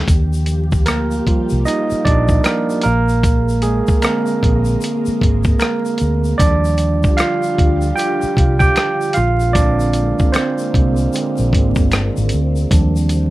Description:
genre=R&B, neo-soul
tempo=76 BPM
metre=4/4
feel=swing 61% on 16ths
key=Eb major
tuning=A4 = 440 Hz
part: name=overdriven tine electric piano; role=accompaniment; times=0.0-13.3 s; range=D3 to G5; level=-18 LUFS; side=right 2 dB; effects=none
part: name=soft string machine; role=sustained chords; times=0.0-13.3 s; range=D3 to G4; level=-26 LUFS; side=left 2 dB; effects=ensemble chorus
part: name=vintage muted fingered electric bass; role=bass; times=0.1-13.3 s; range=G1 to Eb2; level=-17 LUFS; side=equal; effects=none
part: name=dusty soul sampler-style drum kit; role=drums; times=0.1-13.3 s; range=hi-hat, kick drum, rim click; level=-16 LUFS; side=equal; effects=none
part: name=tube shaker and finger snaps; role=percussion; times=0.1-13.3 s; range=none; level=-32 LUFS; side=left 4 dB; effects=none
room=light reverb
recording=vinyl crackle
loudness=-13 LUFS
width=side -17 dB against mid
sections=0.1-13.3 A section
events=tine electric piano solo 0.1-13.3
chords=0.1 Ebmaj9; 2.8 Bb9; 6.4 Ebmaj9; 9.2 Bb9; 12.7 Ebmaj9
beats=| 0.08 0.87 1.66 2.45 | 3.24 4.03 4.82 5.61 | 6.39 7.18 7.97 8.76 | 9.55 10.34 11.13 11.92 | 12.71

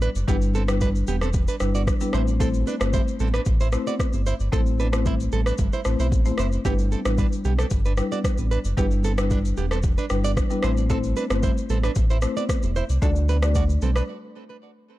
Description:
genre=afrobeats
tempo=113 BPM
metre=4/4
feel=straight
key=G major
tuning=A4 = 441 Hz
part: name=nylon-string guitar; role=riff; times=0.0-14.0 s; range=B3 to D5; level=-31 LUFS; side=right 5 dB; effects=digital delay
part: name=sub bass with octave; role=bass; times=0.0-14.0 s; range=E1 to D2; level=-23 LUFS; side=equal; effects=none
part: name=afro-pop drum kit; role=drums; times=0.0-14.1 s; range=kick drum, rim click, shaker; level=-25 LUFS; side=equal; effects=overdrive
part: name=marimba with medium mallets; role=accompaniment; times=0.3-13.6 s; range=G3 to D5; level=-28 LUFS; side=left 4 dB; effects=none
part: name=congas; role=percussion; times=0.3-14.0 s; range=none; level=-35 LUFS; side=right 8 dB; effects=none
room=small room ambience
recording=dark, warm production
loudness=-20 LUFS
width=side -16 dB against mid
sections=0.0-15.0 A section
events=break 14.1-15.0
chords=0.0 G6; 2.1 Am; 6.7 G6; 13.0 D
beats=| 0.28 0.81 1.34 1.87 | 2.40 2.94 3.47 4.00 | 4.53 5.06 5.59 6.12 | 6.65 7.18 7.71 8.24 | 8.78 9.31 9.84 10.37 | 10.90 11.43 11.96 12.49 | 13.02 13.55

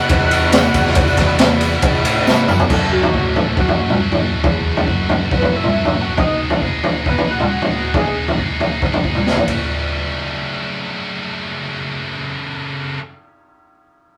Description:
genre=indie rock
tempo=137 BPM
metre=4/4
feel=straight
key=F# minor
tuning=A4 = 439 Hz
part: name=fat analog lead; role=melody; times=0.0-8.2 s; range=F#4 to F#5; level=-24 LUFS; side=equal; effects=chorus, phaser
part: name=combo organ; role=sustained chords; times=0.0-2.7 s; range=F#4 to B5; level=-28 LUFS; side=equal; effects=none
part: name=scooped high-gain guitar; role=riff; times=0.0-13.0 s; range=E2 to G#4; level=-24 LUFS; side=equal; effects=distortion
part: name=growling picked electric bass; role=bass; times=0.1-6.1 s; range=E2 to A2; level=-24 LUFS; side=equal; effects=overdrive
part: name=raw garage drum kit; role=drums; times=0.1-9.6 s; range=crash cymbal, kick drum, ride cymbal, snare drum, toms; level=-19 LUFS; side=equal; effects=none
part: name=tambourine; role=percussion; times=0.1-2.6 s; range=none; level=-40 LUFS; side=equal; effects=none
room=moderate studio reverb, RT60 0.6 s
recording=rough rehearsal-room recording, warm saturation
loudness=-17 LUFS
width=mono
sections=0.0-2.7 A section; 2.7-9.7 B section; 9.7-13.2 C section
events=drum fill 2.3-2.7; analog synth lead solo 2.7-9.7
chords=0.0 Esus2; 2.7 F#m; 6.2 G#m; 9.5 F#m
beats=0.10 0.53 | 0.96 1.40 1.83 2.26 | 2.70 3.13 3.57 4.00 | 4.44 4.88 5.32 5.75 | 6.19 6.63 7.07 7.50 | 7.94 8.38 8.82 9.26 | 9.70 10.14 10.57 11.01 | 11.45 11.89 12.33 12.77

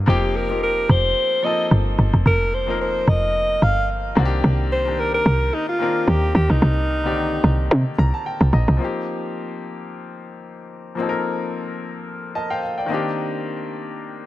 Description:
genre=amapiano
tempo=110 BPM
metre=4/4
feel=swing 55% on 16ths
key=unclear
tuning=A4 = 439 Hz
part: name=clear grand piano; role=accompaniment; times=0.0-14.3 s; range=D3 to Bb5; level=-26 LUFS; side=left 3 dB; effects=none
part: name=woody log drum bass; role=bass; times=0.0-8.8 s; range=F1 to C3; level=-18 LUFS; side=equal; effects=none
part: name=breathy alto saxophone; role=melody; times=0.1-8.1 s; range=Eb4 to F5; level=-22 LUFS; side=equal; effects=digital delay
room=small room ambience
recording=none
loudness=-18 LUFS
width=side -15 dB against mid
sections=0.0-8.8 A section; 8.8-14.3 B section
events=drop 0.0-8.8; grand piano fill 7.7-8.8, 12.1-13.2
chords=0.1 F9sus4; 4.2 Cm7; 8.8 F9sus4; 12.9 Cm7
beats=| 0.08 0.62 1.17 1.71 | 2.26 2.80 3.35 3.89 | 4.44 4.99 5.53 6.08 | 6.62 7.17 7.71 8.26 | 8.80 9.35 9.89 10.44 | 10.98 11.53 12.08 12.62 | 13.17 13.71 14.26

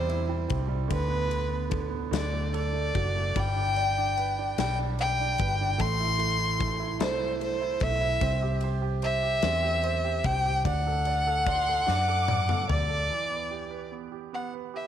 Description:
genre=six-eight pop ballad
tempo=49 BPM (dotted quarters)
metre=6/8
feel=straight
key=G major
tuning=A4 = 441 Hz
part: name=rich violin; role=melody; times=0.0-14.9 s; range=B4 to C6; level=-28 LUFS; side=left 1 dB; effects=none
part: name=clear concert grand piano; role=accompaniment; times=0.0-14.9 s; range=C3 to D5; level=-34 LUFS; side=right 14 dB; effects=none
part: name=vintage muted fingered electric bass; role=bass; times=0.0-13.1 s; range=F#1 to F#2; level=-30 LUFS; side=equal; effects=none
part: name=huge arena drum kit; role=drums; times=0.1-12.9 s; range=kick drum, ride cymbal, snare drum, toms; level=-34 LUFS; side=left 4 dB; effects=none
part: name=bright studio violin section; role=second line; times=11.5-13.1 s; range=C6 to D6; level=-35 LUFS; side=right 1 dB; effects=none
room=light reverb, studio reverb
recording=1960s-style stereo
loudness=-25 LUFS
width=side -9 dB against mid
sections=0.0-13.1 A section; 13.1-14.9 B section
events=drum fill 11.9-13.1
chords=0.0 C; 0.9 Bm/D; 2.1 D; 3.4 G; 5.8 Am; 8.2 C; 10.7 D; 13.1 Em7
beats=| 0.91 2.13 | 3.36 4.58 | 5.80 7.01 | 8.21 9.43 | 10.65 11.88 | 13.11 14.35

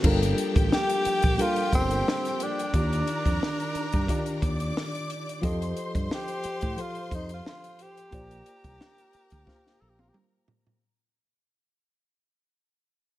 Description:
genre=lush 1970s-style soul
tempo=89 BPM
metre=4/4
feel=swing 54% on 16ths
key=G minor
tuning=A4 = 439 Hz
part: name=warm studio string section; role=second line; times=0.0-10.8 s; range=G4 to D6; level=-36 LUFS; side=left 2 dB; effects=none
part: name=reed electric piano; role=accompaniment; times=0.0-10.8 s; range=Eb3 to F5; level=-32 LUFS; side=left 1 dB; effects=fast tremolo
part: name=string machine, violins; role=sustained chords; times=0.0-5.4 s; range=Eb3 to G4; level=-37 LUFS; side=equal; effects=ensemble chorus
part: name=fingered electric bass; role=bass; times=0.0-10.1 s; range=G1 to A2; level=-29 LUFS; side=equal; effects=none
part: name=compact cocktail drum kit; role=drums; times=0.0-10.8 s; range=crash cymbal, hi-hat, kick drum, snare drum, toms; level=-27 LUFS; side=equal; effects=none
part: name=breathy tenor saxophone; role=melody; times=0.7-10.2 s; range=C4 to A4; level=-30 LUFS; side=equal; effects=none
room=light reverb, studio reverb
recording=none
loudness=-24 LUFS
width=side -15 dB against mid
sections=0.0-10.8 A section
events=fade-out 0.0-10.8; drum fill 9.5-10.8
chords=0.0 Gm7; 2.7 Ebmaj7; 5.4 F7; 8.1 Bb6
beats=| 0.04 0.71 1.39 2.06 | 2.73 3.41 4.08 4.76 | 5.43 6.11 6.78 7.45 | 8.13 8.80 9.47 10.15

